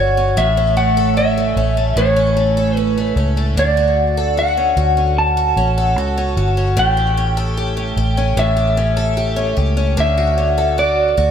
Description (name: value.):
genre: dream pop.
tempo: 75 BPM.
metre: 4/4.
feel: straight.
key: D major.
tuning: A4 = 440 Hz.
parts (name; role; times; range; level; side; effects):
electric slide guitar; melody; 0.0-11.3 s; C#5 to A5; -18 LUFS; equal; digital delay.
picked twelve-string acoustic guitar; arpeggios; 0.0-11.3 s; A2 to A4; -20 LUFS; equal; lush chorus, digital delay.
vintage muted fingered electric bass; bass; 0.0-11.3 s; G1 to D2; -18 LUFS; equal; none.
room: light reverb, small room ambience.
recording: none.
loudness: -14 LUFS.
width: side -8 dB against mid.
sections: 0.0-11.3 A section.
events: none.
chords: 0.4 A; 3.6 Dmaj7; 6.8 A7; 10.0 Dmaj7.